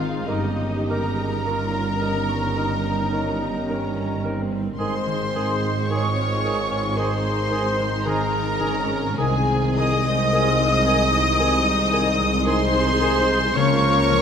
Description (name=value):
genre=classical, slow romantic movement for symphony orchestra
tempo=54 BPM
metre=4/4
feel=uneven beats, rubato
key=Ab major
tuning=A4 = 440 Hz
part: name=clear symphonic violin section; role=melody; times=0.0-14.2 s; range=Eb5 to Eb6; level=-28 LUFS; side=left 3 dB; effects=none
part: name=large flute ensemble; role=second line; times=0.0-14.2 s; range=Eb5 to Eb6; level=-30 LUFS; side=left 1 dB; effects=none
part: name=warm symphonic violin section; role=second line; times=0.0-14.2 s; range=Eb4 to Eb5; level=-30 LUFS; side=left 2 dB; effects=none
part: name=warm symphonic viola section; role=accompaniment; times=0.0-14.2 s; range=Bb3 to Ab4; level=-31 LUFS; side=equal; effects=none
part: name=clear trombone section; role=sustained chords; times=0.0-14.2 s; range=Eb3 to Bb3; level=-31 LUFS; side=right 3 dB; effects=none
part: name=mellow French horn section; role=sustained chords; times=0.0-14.2 s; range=C4 to Bb4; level=-29 LUFS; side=left 4 dB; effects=none
part: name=concert harp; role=arpeggios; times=0.0-14.2 s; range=G2 to Db6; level=-29 LUFS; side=left 5 dB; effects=none
part: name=warm trumpet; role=stabs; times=0.0-14.2 s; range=Eb4 to Eb5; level=-28 LUFS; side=right 1 dB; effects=none
part: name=rich symphonic cello section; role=bass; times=0.0-14.2 s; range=C2 to Ab2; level=-28 LUFS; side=right 2 dB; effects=none
part: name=rich symphonic double bass section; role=bass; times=0.0-14.2 s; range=G1 to Db2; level=-29 LUFS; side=right 4 dB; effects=none
part: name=mellow cor anglais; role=second line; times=0.3-14.2 s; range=Ab4 to Bb4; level=-32 LUFS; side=right 3 dB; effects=none
part: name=dark bassoon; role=accompaniment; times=0.3-14.2 s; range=Eb3 to F3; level=-33 LUFS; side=right 1 dB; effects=none
room=wet scoring stage reverb, RT60 2.0 s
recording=none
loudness=-19 LUFS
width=side -7 dB against mid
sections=0.0-14.2 A section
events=none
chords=0.3 Eb7/G; 4.8 Ab; 9.2 Ab/C; 13.6 Bbm/Db